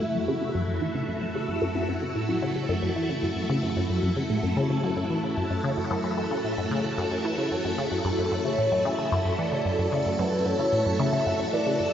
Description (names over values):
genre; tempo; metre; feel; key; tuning
ambient, sequencer-driven space music; 112 BPM; 4/4; straight; F# minor; A4 = 440 Hz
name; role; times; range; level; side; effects
string machine, full ensemble; sustained chords; 0.0-11.9 s; A3 to E5; -28 LUFS; equal; phaser, ensemble chorus
resonant blip pluck; riff; 0.0-11.8 s; F#2 to E3; -27 LUFS; left 1 dB; phaser, tape echo
wind-like tuned noise texture; texture; 0.6-11.9 s; A4; -39 LUFS; right 4 dB; built-in reverb
mellow horn-like synth lead; melody; 8.3-11.9 s; B4 to E5; -27 LUFS; left 1 dB; chorus, vintage 12-bit sampler grit, tape echo
room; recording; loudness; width
wet plate reverb, RT60 3.3 s; echo-heavy mix, nothing above 7.6 kHz; -24 LUFS; side -9 dB against mid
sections
0.0-11.9 A section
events
fade-in on synth texture 0.0-11.9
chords
0.0 F#m7